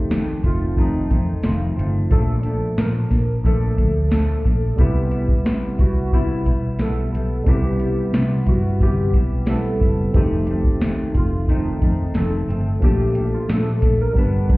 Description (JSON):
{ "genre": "indie pop, bedroom pop", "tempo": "90 BPM", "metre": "4/4", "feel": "straight", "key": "unclear", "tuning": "A4 = 440 Hz", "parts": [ { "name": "warbly lo-fi synth keys", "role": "melody", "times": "0.0-14.6 s", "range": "Eb4 to B4", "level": "-27 LUFS", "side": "left 1 dB", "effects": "lush chorus, analog delay" }, { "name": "barky tine electric piano", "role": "accompaniment", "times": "0.0-14.6 s", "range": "F3 to A5", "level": "-27 LUFS", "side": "right 2 dB", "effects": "overdrive" }, { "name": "semi-hollow electric guitar", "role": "accompaniment", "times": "0.0-14.6 s", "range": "F2 to E4", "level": "-26 LUFS", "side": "left 2 dB", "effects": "analog chorus, warbly pitch drift" }, { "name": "vintage muted fingered electric bass", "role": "bass", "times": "0.0-14.6 s", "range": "F1 to C3", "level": "-22 LUFS", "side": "equal", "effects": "none" }, { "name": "soft vintage rhythm box", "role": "drums", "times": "0.1-14.6 s", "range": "hi-hat, kick drum, snare drum", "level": "-19 LUFS", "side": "equal", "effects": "none" } ], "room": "little or no reverb", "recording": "heard muffled through a wall, club reverb, EQ", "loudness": "-17 LUFS", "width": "side -21 dB against mid", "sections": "0.0-14.6 A section", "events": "none", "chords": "0.0 F7; 2.1 Bbmaj7; 4.8 Cmaj7; 10.1 F7; 12.8 Bbmaj7", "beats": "0.10 0.77 1.44 | 2.11 2.78 3.45 4.12 | 4.79 5.46 6.13 6.80 | 7.47 8.14 8.81 9.48 | 10.15 10.81 11.48 12.15 | 12.82 13.49 14.16" }